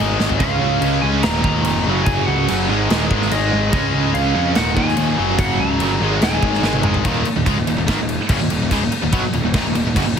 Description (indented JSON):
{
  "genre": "hard rock",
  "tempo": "144 BPM",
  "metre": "4/4",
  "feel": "straight",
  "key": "Eb minor",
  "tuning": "A4 = 440 Hz",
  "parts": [
    { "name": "lightly driven lead guitar", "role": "melody", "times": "0.0-6.8 s", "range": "Eb5 to Bb5", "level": "-24 LUFS", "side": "right 1 dB", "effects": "slapback echo" },
    { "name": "distorted electric guitar", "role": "riff", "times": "0.0-10.2 s", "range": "Eb2 to Db4", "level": "-23 LUFS", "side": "left 13 dB", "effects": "overdrive" },
    { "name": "heavy high-gain guitar", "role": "riff", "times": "0.0-10.2 s", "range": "Eb2 to Db4", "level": "-24 LUFS", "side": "equal", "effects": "distortion" },
    { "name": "fuzz picked electric bass", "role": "bass", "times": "0.0-10.2 s", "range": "Eb1 to F2", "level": "-22 LUFS", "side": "equal", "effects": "overdrive" },
    { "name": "big rock drum kit", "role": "drums", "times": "0.2-10.2 s", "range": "crash cymbal, kick drum, snare drum, toms", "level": "-21 LUFS", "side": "equal", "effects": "none" },
    { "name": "biting overdriven guitar", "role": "riff", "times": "0.4-10.2 s", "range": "Eb2 to Db4", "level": "-23 LUFS", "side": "right 9 dB", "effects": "tremolo" }
  ],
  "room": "little or no reverb",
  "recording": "heavily compressed radio sound",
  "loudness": "-15 LUFS",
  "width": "side -7 dB against mid",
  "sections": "0.0-7.1 A section; 7.1-10.2 B section",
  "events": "drum fill 0.2, 6.6-7.1",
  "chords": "0.4 Db; 1.2 Eb5; 1.9 Gb5; 2.7 Ab5; 3.7 Db; 4.6 Eb5; 5.2 Gb; 6.0 Ab5; 7.1 Ebm"
}